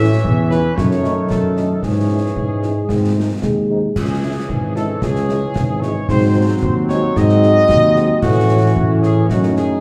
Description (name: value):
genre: military-style march for wind band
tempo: 113 BPM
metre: 2/4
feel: straight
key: C# minor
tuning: A4 = 438 Hz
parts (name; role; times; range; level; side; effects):
- mellow trumpet section; melody; 0.0-9.8 s; F#4 to E5; -23 LUFS; equal; none
- mellow French horn section; accompaniment; 0.0-9.8 s; E3 to F#4; -26 LUFS; equal; none
- clear trombone section; sustained chords; 0.0-9.8 s; D#3 to C#4; -27 LUFS; equal; none
- mellow tuba; bass; 0.0-9.8 s; G#1 to A2; -19 LUFS; equal; none
- concert bass drum, concert snare drum and clash cymbals; drums; 0.2-9.7 s; none; -25 LUFS; equal; none
- dark euphonium; second line; 2.4-3.9 s; G#3 to A3; -24 LUFS; equal; none
room: wet large studio reverb, RT60 1.2 s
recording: heard from further back in the room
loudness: -16 LUFS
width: mono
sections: 0.0-9.8 A section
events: none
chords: 0.0 A; 0.8 D#m7b5/F#; 1.8 C#m/G#; 2.9 G#; 4.0 C#m; 6.1 G#7; 8.2 A6; 9.3 D#m7b5/F#